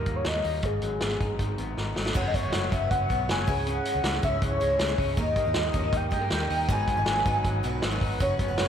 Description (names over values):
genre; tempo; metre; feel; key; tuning
jangly indie pop; 159 BPM; 4/4; straight; G# minor; A4 = 440 Hz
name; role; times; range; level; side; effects
warm velvety synth lead; melody; 0.0-8.7 s; G#4 to G#5; -28 LUFS; left 1 dB; chorus, slapback echo
electric guitar through a small old amp; arpeggios; 0.0-8.7 s; F#2 to D#4; -34 LUFS; left 4 dB; slapback echo
vintage muted fingered electric bass; bass; 0.0-8.7 s; F#1 to G2; -32 LUFS; equal; none
vintage drum kit; drums; 0.1-8.7 s; crash cymbal, hi-hat, kick drum, snare drum; -29 LUFS; equal; none
picked twelve-string acoustic guitar; accompaniment; 2.1-8.7 s; G#2 to C#5; -36 LUFS; right 3 dB; slapback echo
soft string machine; sustained chords; 2.4-8.7 s; G#4 to D#6; -40 LUFS; equal; ensemble chorus
room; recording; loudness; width
moderate lush hall reverb, RT60 2.0 s; big arena sound; -24 LUFS; side -8 dB against mid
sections
0.0-2.2 A section; 2.2-8.7 B section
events
drum fill 1.8-2.2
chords
0.0 D#; 0.6 G#m7; 2.2 F#sus4; 3.5 C#m; 5.2 D#; 6.7 G#m7